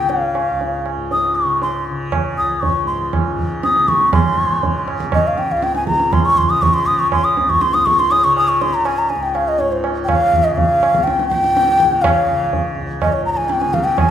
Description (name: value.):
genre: indian classical, Hindustani.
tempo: 121 BPM.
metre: 4/4.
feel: straight.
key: Db raga yaman.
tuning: A4 = 439 Hz.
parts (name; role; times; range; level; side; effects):
mellow bansuri; melody; 0.0-14.1 s; C5 to Eb6; -15 LUFS; left 1 dB; none.
tanpura; drone; 0.0-14.1 s; Db2 to Db3; -25 LUFS; left 2 dB; none.
tabla; percussion; 0.1-14.1 s; none; -20 LUFS; right 3 dB; none.
room: wet recital hall reverb, RT60 1.6 s.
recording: recorded in a church or concert hall.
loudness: -14 LUFS.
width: side -10 dB against mid.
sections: 0.0-4.1 A section; 4.1-14.1 B section.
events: speeding up 0.0-14.1.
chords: none.